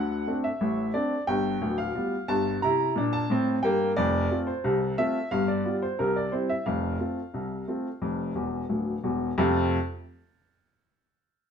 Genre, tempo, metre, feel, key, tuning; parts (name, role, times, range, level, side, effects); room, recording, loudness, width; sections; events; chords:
ragtime piano; 89 BPM; 2/4; straight; F major; A4 = 440 Hz
warm upright piano; solo; 0.0-9.8 s; D1 to Bb5; -25 LUFS; equal
moderate studio reverb, RT60 0.8 s; band playing live in one room; -25 LUFS; side -7 dB against mid
0.0-9.4 A section; 9.4-10.7 B section
upright piano fill 8.4-9.4
0.0 D5; 1.3 G7; 2.6 C7; 4.0 F; 5.3 G7; 6.0 C; 6.7 F